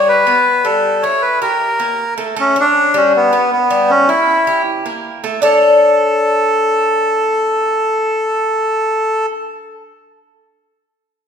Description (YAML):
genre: latin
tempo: 157 BPM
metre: 4/4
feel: straight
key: unclear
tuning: A4 = 440 Hz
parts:
  - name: melodica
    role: melody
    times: 0.0-9.3 s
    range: B3 to Db5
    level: -13 LUFS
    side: equal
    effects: none
  - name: Cuban tres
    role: arpeggios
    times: 0.0-9.9 s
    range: G3 to C#5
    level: -15 LUFS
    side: left 1 dB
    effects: none
room: wet recital hall reverb, RT60 1.9 s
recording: recorded in a church or concert hall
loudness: -12 LUFS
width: side -7 dB against mid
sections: 0.0-2.4 A section; 2.4-5.4 B section; 5.4-8.5 C section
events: none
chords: 0.1 Gadd9; 0.8 Gdim7; 1.6 Gmadd9; 2.4 D5; 3.1 G; 3.9 C#dim/G; 4.7 Gmadd9; 5.4 D5